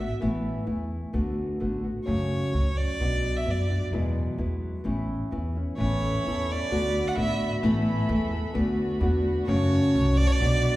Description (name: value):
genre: mexican folk, mariachi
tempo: 130 BPM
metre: 2/4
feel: straight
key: A major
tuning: A4 = 440 Hz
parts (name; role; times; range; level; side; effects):
- rich violin; melody; 0.0-10.8 s; C#5 to F#5; -30 LUFS; right 2 dB; none
- nylon-string guitar; accompaniment; 0.0-10.8 s; E2 to F#4; -27 LUFS; left 1 dB; none
- upright bass; bass; 0.0-10.7 s; A1 to F#2; -28 LUFS; equal; none
- warm studio violin section; sustained chords; 5.8-10.8 s; F#4 to B5; -37 LUFS; right 1 dB; none
room: wet recital hall reverb, RT60 1.8 s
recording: heard from further back in the room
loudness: -24 LUFS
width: side -16 dB against mid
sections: 0.0-5.8 A section; 5.8-10.8 A section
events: none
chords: 0.2 Asus2; 1.1 D6; 2.1 F#m; 3.0 Bm; 3.9 Eadd9; 4.9 Aadd9; 6.7 D6; 7.6 Asus2; 8.6 D6; 9.5 F#m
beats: | 0.21 0.67 | 1.14 1.61 | 2.08 2.54 | 3.01 3.47 | 3.93 4.39 | 4.85 5.32 | 5.80 6.26 | 6.72 7.18 | 7.64 8.10 | 8.56 9.02 | 9.48 9.95 | 10.41